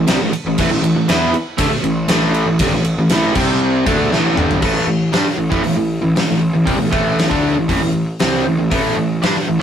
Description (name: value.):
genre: hard rock.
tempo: 118 BPM.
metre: 4/4.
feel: straight.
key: unclear.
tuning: A4 = 440 Hz.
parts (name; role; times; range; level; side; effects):
overdriven semi-hollow guitar; riff; 0.0-9.6 s; G2 to E4; -16 LUFS; equal; none.
fuzz picked electric bass; bass; 0.0-9.6 s; G1 to G2; -22 LUFS; equal; overdrive.
gated 80s drum kit; drums; 0.1-9.3 s; crash cymbal, hi-hat, kick drum, ride cymbal, snare drum, toms; -19 LUFS; equal; none.
room: moderate studio reverb, RT60 0.6 s.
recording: rough rehearsal-room recording, warm saturation.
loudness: -14 LUFS.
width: side -8 dB against mid.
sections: 0.0-4.6 A section; 4.6-9.6 B section.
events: drum fill 4.1-4.6.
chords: 0.0 A5; 3.4 C5; 3.9 A5.